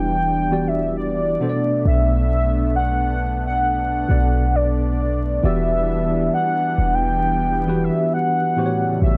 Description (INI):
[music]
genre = contemporary R&B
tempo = 67 BPM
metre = 4/4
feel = swing 58% on 16ths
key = unclear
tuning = A4 = 440 Hz
[part]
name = warm velvety synth lead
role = melody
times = 0.0-9.2 s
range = D5 to G5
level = -24 LUFS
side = equal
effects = chorus
[part]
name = tine electric piano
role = accompaniment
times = 0.0-9.2 s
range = A2 to D5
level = -26 LUFS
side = equal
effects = none
[part]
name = warm analog pad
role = sustained chords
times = 0.0-9.2 s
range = C#3 to D4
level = -28 LUFS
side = equal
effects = lush chorus
[part]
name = clean 808-style bass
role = bass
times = 0.0-9.2 s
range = E1 to B1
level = -24 LUFS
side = equal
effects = none
[sound]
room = light reverb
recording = dry, gritty hardware recording, vinyl crackle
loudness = -20 LUFS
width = mono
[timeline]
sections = 0.0-9.2 A section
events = none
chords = 0.0 Em7; 1.4 Bm7; 5.4 Em7; 8.6 A13